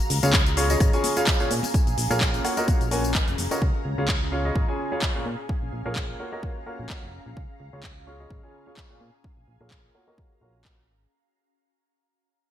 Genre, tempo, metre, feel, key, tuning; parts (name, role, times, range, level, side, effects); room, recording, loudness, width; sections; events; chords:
piano house; 128 BPM; 4/4; swing 55% on 16ths; Db major; A4 = 442 Hz
house drum kit; drums; 0.0-10.8 s; handclaps, hi-hat, rim click, shaker; -28 LUFS; left 1 dB; overdrive, studio reverb, gated reverb
tambourine and congas; percussion; 0.0-3.6 s; -35 LUFS; left 4 dB
ethereal airy pad; texture; 0.0-11.1 s; Db4 to Bb5; -34 LUFS; equal; ensemble chorus, built-in reverb, phaser, sidechain pumping
solid FM bass; bass; 0.1-11.1 s; F1 to Bb2; -28 LUFS; equal; sidechain pumping
clear grand piano; riff; 0.2-10.8 s; Bb2 to Ab5; -28 LUFS; equal; sidechain pumping, low-pass filter, ping-pong delay
electronic kick drum; drums; 0.3-10.8 s; -24 LUFS; equal; overdrive, studio reverb
light reverb; bright 1980s-style digital production; -22 LUFS; side -11 dB against mid
0.0-11.1 A section
fade-out 0.0-11.1; filter sweep on grand piano 0.0-11.1
0.0 Db; 1.5 Bbm7; 2.4 Gbmaj7/Bb; 3.6 Db; 5.3 Bbm7; 6.2 Gbmaj7/Bb; 7.4 Db; 9.0 Bbm7; 9.9 Gbmaj7/Bb